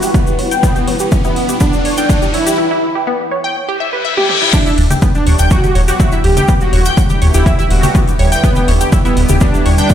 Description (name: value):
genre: melodic techno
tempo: 123 BPM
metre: 4/4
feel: straight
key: E dorian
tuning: A4 = 440 Hz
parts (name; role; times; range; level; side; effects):
- fat analog lead; melody; 0.0-9.9 s; B3 to G4; -18 LUFS; equal; ensemble chorus, sidechain pumping, ping-pong delay
- lush unison pad; sustained chords; 0.0-9.9 s; D3 to B4; -22 LUFS; right 1 dB; chorus, phaser, sidechain pumping
- tight sequenced synth; arpeggios; 0.0-9.9 s; B3 to G6; -19 LUFS; equal; chorus, sidechain pumping, digital delay
- plucky analog bass; bass; 0.0-9.8 s; E1; -12 LUFS; equal; sidechain pumping, high-pass filter
- house drum kit; drums; 0.0-9.9 s; congas, crash cymbal, hi-hat, toms; -22 LUFS; left 2 dB; overdrive, sidechain pumping on hats, high-pass filter on hats, sidechain pumping on perc, high-pass filter on perc, sidechain pumping on toms, high-pass filter on toms, sidechain pumping on cymbals, high-pass filter on cymbals, high-pass filter on room
- tube shaker; percussion; 0.0-9.9 s; none; -26 LUFS; left 3 dB; none
- riser and reverse cymbal; sound effects; 0.5-4.5 s; none; -20 LUFS; left 2 dB; none
- granular cloud pad; texture; 0.0-2.6 s; E4 to F#5; -23 LUFS; left 1 dB; built-in reverb, sidechain pumping
- electronic kick drum; drums; 0.1-9.9 s; none; -13 LUFS; equal; overdrive
room: light reverb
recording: played on a big sound system in a bare room, stone room reverb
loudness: -10 LUFS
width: side -10 dB against mid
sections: 0.0-4.5 A section; 4.5-9.9 B section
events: build-up 0.0-4.5; riser 0.5-2.6; filter sweep on synth arpeggio sound 0.0-4.5; filter sweep on analog synth lead 0.0-4.5; filter sweep on analog synth pad 0.0-4.5; drum fill 0.6-2.6, 4.2-4.5; reverse cymbal 3.8-4.5; drop 4.5-9.9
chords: 0.0 Em7